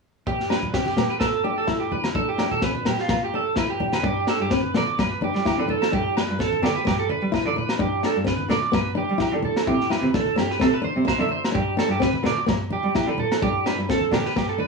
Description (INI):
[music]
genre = highlife guitar band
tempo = 128 BPM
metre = 4/4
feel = swing 53% on 16ths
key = G major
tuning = A4 = 441 Hz
[part]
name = picked plugged-in steel-string acoustic guitar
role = accompaniment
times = 0.3-14.7 s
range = B3 to E4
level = -27 LUFS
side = left 5 dB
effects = none
[part]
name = electric guitar at the edge of break-up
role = arpeggios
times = 0.3-14.7 s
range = F4 to E5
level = -24 LUFS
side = right 4 dB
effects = vibrato effect, slapback echo
[part]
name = crunchy breakbeat drum kit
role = drums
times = 0.3-14.5 s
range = kick drum, snare drum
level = -28 LUFS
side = left 1 dB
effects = none
[part]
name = agogo bells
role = percussion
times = 0.5-14.5 s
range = none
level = -34 LUFS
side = right 2 dB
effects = none
[part]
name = congas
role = percussion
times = 0.6-14.7 s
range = none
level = -33 LUFS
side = right 3 dB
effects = none
[part]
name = bright cello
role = bass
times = 4.0-14.4 s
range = G2 to G3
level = -27 LUFS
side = right 1 dB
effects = none
[sound]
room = moderate studio reverb, RT60 0.6 s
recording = small room ambience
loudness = -20 LUFS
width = side -3 dB against mid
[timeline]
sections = 0.3-4.0 A section; 4.0-14.7 B section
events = none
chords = 0.3 G